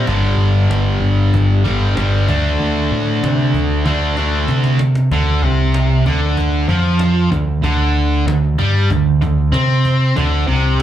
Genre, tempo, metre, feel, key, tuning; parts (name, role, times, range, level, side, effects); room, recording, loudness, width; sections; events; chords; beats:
hard rock; 95 BPM; 4/4; straight; D minor; A4 = 442 Hz
distorted electric guitar; riff; 0.0-10.8 s; G2 to D4; -17 LUFS; right 1 dB; overdrive, slapback echo
growling picked electric bass; bass; 0.0-10.8 s; G1 to C3; -15 LUFS; equal; overdrive
cajon; drums; 0.1-10.8 s; -27 LUFS; equal
little or no reverb; live gig heard through the venue's PA, club reverb; -13 LUFS; side -11 dB against mid
0.0-5.1 A section; 5.1-10.8 B section
drum fill 3.9-5.1
0.1 G5; 2.3 D5; 5.1 Dm
| 0.07 0.70 1.33 1.97 | 2.60 3.23 3.86 4.49 | 5.12 5.75 6.38 7.01 | 7.64 8.27 8.90 9.53 | 10.16 10.80